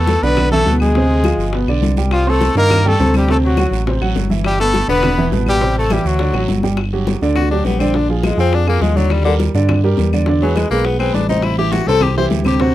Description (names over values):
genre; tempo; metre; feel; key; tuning
Afro-Cuban jazz; 206 BPM; 4/4; straight; G major; A4 = 441 Hz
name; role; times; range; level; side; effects
bright trumpet; melody; 0.0-6.5 s; F4 to B4; -18 LUFS; equal; none
edgy tenor saxophone; second line; 0.0-12.7 s; D3 to C5; -21 LUFS; left 7 dB; none
warm baby grand piano; accompaniment; 0.0-12.7 s; B2 to C6; -18 LUFS; right 2 dB; none
smooth synth bass; bass; 0.0-12.7 s; E1 to G2; -17 LUFS; equal; none
bongos; percussion; 0.1-12.7 s; none; -26 LUFS; left 6 dB; none
congas; percussion; 0.1-12.7 s; none; -23 LUFS; left 1 dB; none
guiro; percussion; 0.1-12.7 s; none; -34 LUFS; right 18 dB; none
claves; percussion; 0.4-12.6 s; none; -32 LUFS; left 10 dB; none
room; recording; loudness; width
light reverb; dry, close 1970s-style studio recording; -13 LUFS; side -14 dB against mid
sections
0.0-6.8 A section; 6.8-12.7 B section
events
drum fill 6.3-6.8; tenor saxophone solo 6.8-12.7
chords
0.0 E7sus4; 1.0 Dm7b5; 1.5 G; 2.1 Cm9; 3.3 D9; 4.4 G69; 5.0 E5; 5.6 Am; 6.2 D; 6.8 G5; 7.9 Bb7; 9.1 Ebmaj7; 10.3 E7; 11.4 Am7